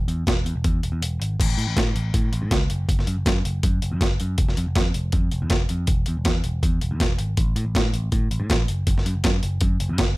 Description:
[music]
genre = indie rock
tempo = 160 BPM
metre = 4/4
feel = straight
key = unclear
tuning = A4 = 439 Hz
[part]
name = picked electric bass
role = bass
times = 0.0-10.1 s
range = E1 to A2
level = -24 LUFS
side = equal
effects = none
[part]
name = boom bap sampler-style drum kit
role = drums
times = 0.1-10.1 s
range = crash cymbal, hi-hat, kick drum, snare drum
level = -21 LUFS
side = equal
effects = overdrive
[sound]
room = little or no reverb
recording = none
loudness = -20 LUFS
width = side -21 dB against mid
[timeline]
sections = 0.0-1.4 A section; 1.4-10.2 B section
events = break 1.0-1.4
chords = none

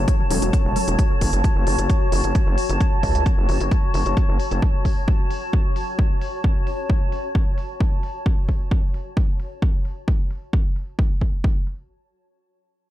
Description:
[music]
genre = driving peak-time techno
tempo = 132 BPM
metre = 4/4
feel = straight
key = F# minor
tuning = A4 = 440 Hz
[part]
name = tight sequenced synth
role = riff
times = 0.0-1.0 s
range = E3 to F#4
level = -34 LUFS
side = equal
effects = none
[part]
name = gritty driven synth bass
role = bass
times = 0.0-4.6 s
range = E1 to C#2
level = -22 LUFS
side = equal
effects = distortion, sidechain pumping
[part]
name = downlifter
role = sound effects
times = 0.0-1.0 s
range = none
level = barely audible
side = none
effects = none
[part]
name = granular cloud pad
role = texture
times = 0.0-8.3 s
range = F#4 to A5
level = -27 LUFS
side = left 2 dB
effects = built-in reverb, sidechain pumping
[part]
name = electronic hi-hat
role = drums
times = 0.1-11.8 s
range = none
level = -34 LUFS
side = equal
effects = overdrive, sidechain pumping on hats, low-pass filter on hats, small room ambience, sidechain pumping on cymbals, low-pass filter on cymbals, low-pass filter on snare
[part]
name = electronic kick drum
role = drums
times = 0.1-11.5 s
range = none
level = -19 LUFS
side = equal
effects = overdrive, small room ambience
[part]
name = rave stab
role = stabs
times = 0.3-0.8 s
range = F#3 to A4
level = -31 LUFS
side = equal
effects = none
[sound]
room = digital ambience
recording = none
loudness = -18 LUFS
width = side -14 dB against mid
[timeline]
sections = 0.0-11.9 A section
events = filter sweep on drum 0.0-11.9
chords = 0.0 F#m

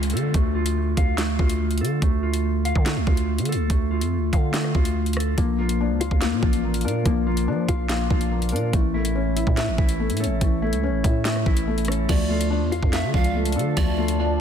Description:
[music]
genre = hip hop, drill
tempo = 143 BPM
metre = 4/4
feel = half-time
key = D harmonic minor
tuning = A4 = 440 Hz
[part]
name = mellow electric guitar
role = arpeggios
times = 0.0-14.4 s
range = A3 to F5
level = -26 LUFS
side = equal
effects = tape echo
[part]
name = growling 808-style bass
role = bass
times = 0.0-14.4 s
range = G1 to F3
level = -24 LUFS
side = right 1 dB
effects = none
[part]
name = drill drum kit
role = drums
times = 0.0-14.2 s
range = crash cymbal, handclaps, hi-hat, kick drum, rim click, snare drum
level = -23 LUFS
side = equal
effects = none
[part]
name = downlifter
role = sound effects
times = 0.0-2.0 s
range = none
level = -41 LUFS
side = equal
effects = none
[part]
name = felt-muted upright piano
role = accompaniment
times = 5.4-14.4 s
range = E3 to F5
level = -28 LUFS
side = left 7 dB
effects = none
[part]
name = breathy reedy pan flute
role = second line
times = 12.1-14.2 s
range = D5 to F5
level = -30 LUFS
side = right 6 dB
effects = tape echo
[part]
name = dark analog pad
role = sustained chords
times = 12.1-14.4 s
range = F4 to A5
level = -32 LUFS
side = right 1 dB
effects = chorus
[sound]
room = digital ambience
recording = dense, heavily limited modern master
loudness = -20 LUFS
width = side -8 dB against mid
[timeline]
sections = 0.0-12.1 A section; 12.1-14.4 B section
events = break 0.0-5.4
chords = 0.0 Dm; 5.4 Bb; 8.7 A; 12.1 Dm

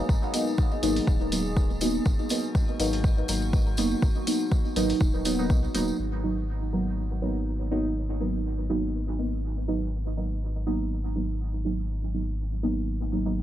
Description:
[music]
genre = dub techno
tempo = 122 BPM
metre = 4/4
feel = swing 55% on 16ths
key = G# minor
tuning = A4 = 440 Hz
[part]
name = deep mellow chord stab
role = stabs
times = 0.0-13.4 s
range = F#3 to D#4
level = -28 LUFS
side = right 1 dB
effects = chorus, phaser, sidechain pumping, dub echo
[part]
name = metallic inharmonic drone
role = texture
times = 0.0-6.0 s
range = G#3 to G#4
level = -39 LUFS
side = right 2 dB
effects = chorus, built-in reverb, sidechain pumping
[part]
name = pure sine sub bass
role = bass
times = 0.1-13.4 s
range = D#1 to B1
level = -30 LUFS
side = equal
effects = tube saturation, sidechain pumping
[part]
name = electronic kick drum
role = drums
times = 0.1-5.6 s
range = none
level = -24 LUFS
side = equal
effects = none
[part]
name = tambourine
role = percussion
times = 0.1-6.0 s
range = none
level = -39 LUFS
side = right 2 dB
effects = none
[part]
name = electronic hi-hat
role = drums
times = 0.3-5.9 s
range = none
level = -33 LUFS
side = left 1 dB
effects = none
[sound]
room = little or no reverb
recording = dry, gritty hardware recording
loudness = -24 LUFS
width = side -12 dB against mid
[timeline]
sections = 0.0-6.0 A section; 6.0-13.4 B section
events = filter sweep on synth stab 6.0-13.4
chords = 0.0 G#m9

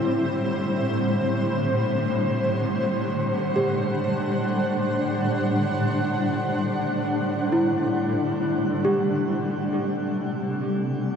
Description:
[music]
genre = ambient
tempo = free time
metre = none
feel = none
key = unclear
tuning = A4 = 444 Hz
[part]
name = shimmering ambient pad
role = sustained chords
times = 0.0-11.2 s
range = A2 to F#5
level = -22 LUFS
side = equal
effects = chorus, built-in reverb, shimmer reverb
[part]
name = small celesta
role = arpeggios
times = 0.0-11.2 s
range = E4 to G4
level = -29 LUFS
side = equal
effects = tape echo, shimmer reverb
[part]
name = analog drone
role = drone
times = 10.0-11.2 s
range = A3 to A4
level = -42 LUFS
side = equal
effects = none
[sound]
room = wet huge ambient reverb, RT60 8.1 s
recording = dark, warm production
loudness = -22 LUFS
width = side -7 dB against mid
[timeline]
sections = 0.0-8.4 A section; 8.4-11.2 B section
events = none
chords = 0.0 Cadd9/A; 8.4 Am9

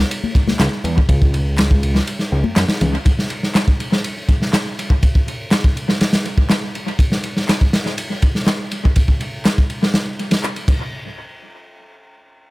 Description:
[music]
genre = breakbeat, breaks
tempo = 122 BPM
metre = 4/4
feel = straight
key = C# minor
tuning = A4 = 441 Hz
[part]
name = dark analog pad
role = sustained chords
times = 0.0-3.0 s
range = none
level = barely audible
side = none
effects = none
[part]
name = fat analog bass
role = bass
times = 0.0-3.0 s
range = C#2 to F#2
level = -18 LUFS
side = equal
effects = none
[part]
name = crunchy breakbeat drum kit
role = drums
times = 0.1-10.8 s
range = crash cymbal, kick drum, ride cymbal, snare drum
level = -16 LUFS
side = equal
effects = analog delay
[part]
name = congas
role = percussion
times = 0.2-2.9 s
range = none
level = -22 LUFS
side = left 3 dB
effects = none
[part]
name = electronic handclaps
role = drums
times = 0.6-10.5 s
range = none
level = -28 LUFS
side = equal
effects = analog delay
[sound]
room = small room ambience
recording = echo-heavy mix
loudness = -15 LUFS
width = side -20 dB against mid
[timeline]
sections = 0.0-10.9 A section; 10.9-12.5 B section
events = none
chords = 0.0 C#m9; 10.7 N.C.

